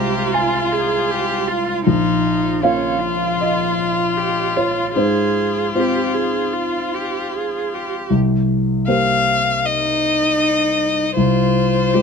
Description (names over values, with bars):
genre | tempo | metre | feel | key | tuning
neoclassical piano and strings | 78 BPM | 4/4 | rubato | F minor | A4 = 437 Hz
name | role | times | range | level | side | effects
warm violin | melody | 0.0-12.0 s | F4 to F5 | -20 LUFS | left 4 dB | none
rich cello | second line | 0.0-12.0 s | Db4 to Ab4 | -22 LUFS | right 5 dB | none
dark grand piano | accompaniment | 0.0-12.0 s | Bb1 to Bb5 | -19 LUFS | left 1 dB | none
room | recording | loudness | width
little or no reverb | close, detailed microphones | -16 LUFS | side -6 dB against mid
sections
0.0-8.1 A section; 8.1-12.0 A section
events
none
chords
0.0 Fm/C; 1.9 Bbm; 5.0 Fm/Ab; 8.1 Cm7; 11.2 F5/C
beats
0.34 1.11 | 1.87 2.64 3.40 4.18 | 4.97 5.76 6.55 7.34 | 8.13 8.89 9.66 10.42 | 11.18 11.94